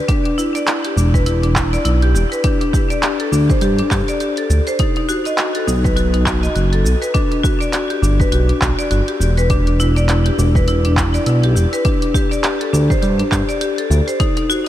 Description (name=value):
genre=organic downtempo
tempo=102 BPM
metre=4/4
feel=swing 58% on 16ths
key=E minor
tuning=A4 = 441 Hz
part: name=marimba with hard mallets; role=arpeggios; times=0.0-14.7 s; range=D4 to D#5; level=-18 LUFS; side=left 2 dB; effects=ping-pong delay
part: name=deep house drum kit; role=drums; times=0.1-14.6 s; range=handclaps, hi-hat, shaker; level=-24 LUFS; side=right 1 dB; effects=overdrive
part: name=electronic kick drum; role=drums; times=0.1-14.3 s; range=none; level=-18 LUFS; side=equal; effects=overdrive
part: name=smooth synth bass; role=bass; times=1.0-14.0 s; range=E1 to G2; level=-15 LUFS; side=equal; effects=sidechain pumping
room=light reverb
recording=none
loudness=-14 LUFS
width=side -12 dB against mid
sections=0.1-14.7 A section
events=none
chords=0.1 Em7; 2.4 Dsus4; 4.8 B7; 7.1 Gmaj7; 9.5 Em7; 11.9 Dsus4